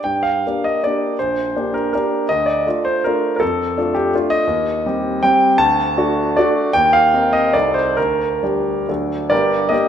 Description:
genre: classical, romantic triple-time dance for piano with dotted rhythms.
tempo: 127-177 BPM.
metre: 3/4.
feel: rubato.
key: G minor.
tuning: A4 = 440 Hz.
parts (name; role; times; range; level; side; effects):
clear concert grand piano; solo; 0.0-9.9 s; G1 to A5; -15 LUFS; equal; none.
room: wet scoring stage reverb, RT60 1.8 s.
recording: minimal, uncompressed stereo recording.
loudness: -15 LUFS.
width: side -9 dB against mid.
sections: 0.0-9.3 A section.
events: none.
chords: 0.0 Gm; 1.2 Gm/Bb; 2.3 Dm; 3.4 Dm/F; 4.5 Cm/Eb; 5.6 D; 6.7 Eb5; 7.5 Adim/C; 8.0 Gm/D; 8.9 D; 9.3 Gm.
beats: | 0.03 0.43 0.82 | 1.18 1.54 1.93 | 2.29 2.65 3.03 | 3.40 3.77 4.13 | 4.47 4.84 5.22 | 5.58 5.96 6.36 | 6.74 7.13 7.54 | 7.97 8.43 8.89 | 9.32 9.72.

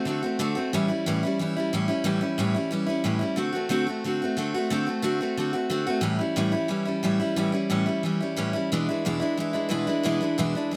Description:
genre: rock.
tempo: 180 BPM.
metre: 4/4.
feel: straight.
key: A mixolydian.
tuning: A4 = 438 Hz.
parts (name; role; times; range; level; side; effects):
picked steel-string acoustic guitar; solo; 0.0-10.8 s; E2 to F#4; -26 LUFS; equal; none.
room: light reverb.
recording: none.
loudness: -26 LUFS.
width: mono.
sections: 0.0-10.8 A section.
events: none.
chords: 0.0 D7; 0.7 A7; 3.4 D7; 6.0 A7; 8.7 E7.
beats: 0.06 0.39 | 0.72 1.05 1.38 1.72 | 2.05 2.38 2.71 3.04 | 3.38 3.71 4.04 4.37 | 4.71 5.04 5.37 5.70 | 6.04 6.37 6.70 7.03 | 7.37 7.70 8.03 8.36 | 8.70 9.03 9.36 9.70 | 10.03 10.36 10.70.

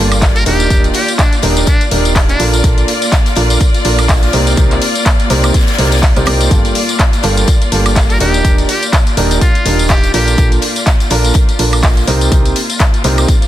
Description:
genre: piano house.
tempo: 124 BPM.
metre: 4/4.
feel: swing 57% on 16ths.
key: Bb major.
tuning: A4 = 440 Hz.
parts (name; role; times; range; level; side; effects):
clear upright piano; riff; 0.0-13.3 s; G2 to Bb4; -18 LUFS; right 2 dB; sidechain pumping, dub echo.
solid FM bass; bass; 0.0-13.3 s; Eb1 to C2; -14 LUFS; equal; tube saturation, sidechain pumping.
clear studio string section; texture; 0.0-13.5 s; Bb3 to D5; -20 LUFS; left 1 dB; sidechain pumping.
house drum kit; drums; 0.1-13.5 s; handclaps, hi-hat, tambourine, woodblock; -17 LUFS; left 1 dB; none.
electronic kick drum; drums; 0.2-13.4 s; none; -11 LUFS; equal; none.
soft-mallet drum kit; drums; 0.2-13.4 s; hi-hat, snare drum; -27 LUFS; left 3 dB; none.
trumpet with metal mute; melody; 0.4-2.5, 8.1-10.5 s; D4 to Bb4; -20 LUFS; equal; dub echo.
room: light reverb, small room ambience.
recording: dense, heavily limited modern master.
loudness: -9 LUFS.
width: side -13 dB against mid.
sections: 0.0-13.5 A section.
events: none.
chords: 0.5 Ebmaj7; 2.4 Bbmaj7; 4.3 Cm7; 6.5 Gm9; 8.2 Ebmaj7; 10.1 Bbmaj7; 12.1 Cm7.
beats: 0.22 | 0.70 1.19 1.67 2.15 | 2.64 3.12 3.61 4.09 | 4.58 5.06 5.54 6.03 | 6.51 6.99 7.48 7.96 | 8.45 8.93 9.41 9.90 | 10.38 10.87 11.35 11.83 | 12.32 12.80 13.28.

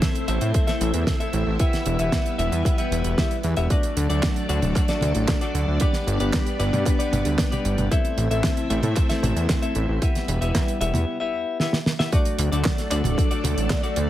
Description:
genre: italo disco.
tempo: 114 BPM.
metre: 4/4.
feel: straight.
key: unclear.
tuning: A4 = 440 Hz.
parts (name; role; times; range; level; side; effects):
string machine, full ensemble; sustained chords; 0.0-14.1 s; F#3 to E5; -28 LUFS; equal; ensemble chorus.
direct-recorded clean electric guitar; stabs; 0.0-14.1 s; A3 to E5; -28 LUFS; left 3 dB; lush chorus, digital delay.
damped 70s drum kit; drums; 0.0-14.1 s; handclaps, hi-hat, snare drum, toms; -27 LUFS; right 2 dB; none.
electronic kick drum; drums; 0.0-13.8 s; none; -23 LUFS; equal; none.
fat analog bass; bass; 0.3-14.1 s; D1 to A2; -24 LUFS; equal; none.
room: light reverb, studio ambience.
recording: none.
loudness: -20 LUFS.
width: side -13 dB against mid.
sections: 0.0-12.1 A section; 12.1-14.1 B section.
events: drum fill 11.6-12.1.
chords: 0.0 Am; 1.6 Em; 3.7 D; 5.8 G; 7.9 Am; 10.0 Em; 12.1 D.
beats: 0.02 0.55 1.07 | 1.60 2.12 2.65 3.18 | 3.70 4.23 4.76 5.28 | 5.81 6.34 6.86 7.39 | 7.91 8.44 8.97 9.49 | 10.02 10.55 11.07 11.60 | 12.12 12.65 13.18 13.70.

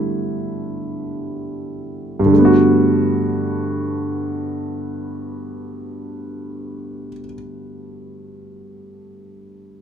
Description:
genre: jazz.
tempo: free time.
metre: none.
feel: none.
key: G major.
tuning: A4 = 440 Hz.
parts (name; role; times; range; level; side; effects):
warm concert grand piano; accompaniment; 0.0-9.8 s; G2 to F#4; -19 LUFS; equal; none.
room: little or no reverb.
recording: close, detailed microphones.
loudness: -16 LUFS.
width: side -8 dB against mid.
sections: 0.0-2.3 A section; 2.3-8.7 B section.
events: slowing down 0.0-2.3.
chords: 0.0 Gmaj9.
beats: free time.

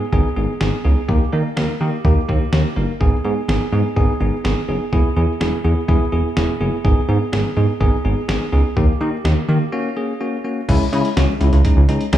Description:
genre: synth-pop.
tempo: 125 BPM.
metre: 4/4.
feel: straight.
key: G# minor.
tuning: A4 = 439 Hz.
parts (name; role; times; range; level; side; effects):
bell-like tine electric piano; accompaniment; 0.0-12.2 s; G#3 to A#4; -21 LUFS; left 1 dB; none.
chorused synth bass; bass; 0.1-12.2 s; E1 to D#3; -17 LUFS; right 1 dB; none.
trip hop sampler-style drum kit; drums; 0.1-12.2 s; crash cymbal, hi-hat, kick drum, snare drum; -21 LUFS; right 1 dB; none.
room: light reverb.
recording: rough home demo mix, studio reverb.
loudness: -15 LUFS.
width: side -12 dB against mid.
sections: 0.0-10.7 A section; 10.7-12.2 B section.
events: break 9.7-10.7.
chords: 0.0 G#m; 1.1 D#; 3.0 G#m; 4.9 E; 6.8 G#m; 8.8 D#; 9.7 F#add9; 10.7 C#m.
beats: 0.13 0.61 | 1.09 1.57 2.05 2.53 | 3.01 3.49 3.97 4.45 | 4.93 5.41 5.89 6.37 | 6.85 7.33 7.81 8.29 | 8.77 9.25 9.73 10.21 | 10.69 11.17 11.65 12.13.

